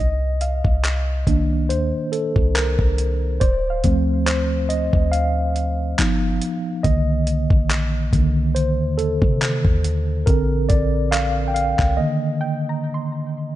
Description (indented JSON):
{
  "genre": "contemporary R&B",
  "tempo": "70 BPM",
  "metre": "4/4",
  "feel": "swing 54% on 16ths",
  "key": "C dorian",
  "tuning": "A4 = 440 Hz",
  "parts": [
    { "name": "mellow tine electric piano", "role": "accompaniment", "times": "0.0-13.6 s", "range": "D3 to G5", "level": "-21 LUFS", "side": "right 1 dB", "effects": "medium stereo tremolo" },
    { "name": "clean 808-style bass", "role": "bass", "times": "0.0-12.0 s", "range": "D1 to C3", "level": "-21 LUFS", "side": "equal", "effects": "none" },
    { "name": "dusty soul sampler-style drum kit", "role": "drums", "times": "0.4-12.0 s", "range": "handclaps, hi-hat, kick drum", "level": "-21 LUFS", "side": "equal", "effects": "overdrive" },
    { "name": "soft round pluck", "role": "texture", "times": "0.4-4.7, 11.1-13.6 s", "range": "D5 to C6", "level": "-35 LUFS", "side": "equal", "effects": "chorus, tape echo" }
  ],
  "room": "light reverb",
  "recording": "dark, warm production, nothing above 10.6 kHz",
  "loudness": "-18 LUFS",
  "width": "side -14 dB against mid",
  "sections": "0.0-13.6 A section",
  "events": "tine electric piano solo 0.0-13.6; break 12.0-13.6",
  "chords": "0.0 Cm7; 3.4 Dm7; 6.0 Gaug7; 6.8 Cm7; 10.3 Bbmaj7; 12.0 Cm9",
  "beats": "0.84 1.70 2.56 | 3.41 4.27 5.13 5.99 | 6.84 7.70 8.56 9.41 | 10.27 11.13 11.98 12.84"
}